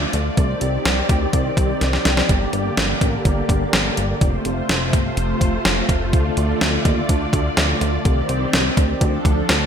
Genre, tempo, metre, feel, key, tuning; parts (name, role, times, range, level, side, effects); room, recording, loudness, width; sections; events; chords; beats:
synth-pop; 125 BPM; 4/4; straight; G minor; A4 = 440 Hz
string machine, violas; sustained chords; 0.0-9.7 s; C3 to D5; -22 LUFS; equal; ensemble chorus
chorused synth bass; bass; 0.0-9.7 s; F1 to Eb2; -22 LUFS; equal
clean 12-bit digital drum machine; drums; 0.1-9.6 s; hi-hat, kick drum, snare drum; -19 LUFS; equal; gated reverb
moderate lush hall reverb, RT60 1.6 s, digital ambience; bright 1980s-style digital production; -16 LUFS; side -8 dB against mid
0.0-9.7 A section
drum fill 1.8-2.3
0.4 Cmadd9; 2.3 Gm; 4.2 F; 6.1 Dm; 8.1 Cmadd9; 9.0 Dm
| 0.37 0.85 1.33 1.81 | 2.29 2.77 3.25 3.73 | 4.21 4.69 5.17 5.65 | 6.13 6.61 7.09 7.57 | 8.05 8.53 9.01 9.49